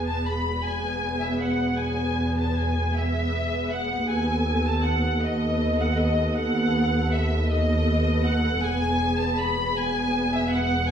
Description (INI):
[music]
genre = classical, slow romantic movement for string orchestra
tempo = 52 BPM (dotted quarters)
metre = 12/8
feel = rubato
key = E major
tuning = A4 = 441 Hz
[part]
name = muted chamber violin section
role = second line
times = 0.0-10.9 s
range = D#5 to B5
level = -31 LUFS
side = equal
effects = none
[part]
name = muted chamber viola section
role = accompaniment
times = 0.0-10.9 s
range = B3 to A4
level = -28 LUFS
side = equal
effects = none
[part]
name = muted chamber cello section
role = bass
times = 0.0-10.9 s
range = D#2 to E2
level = -29 LUFS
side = right 1 dB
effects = none
[part]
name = muted chamber double bass section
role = bass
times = 0.0-10.9 s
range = E1 to D#2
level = -27 LUFS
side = equal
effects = none
[part]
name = muted chamber violin section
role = melody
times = 0.1-10.9 s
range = D#5 to B5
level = -29 LUFS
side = left 2 dB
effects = none
[sound]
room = wet stone room reverb, RT60 1.2 s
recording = heard from further back in the room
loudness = -22 LUFS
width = side -8 dB against mid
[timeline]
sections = 0.0-10.9 A section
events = none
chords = 0.0 E; 4.1 B7/D#; 8.6 E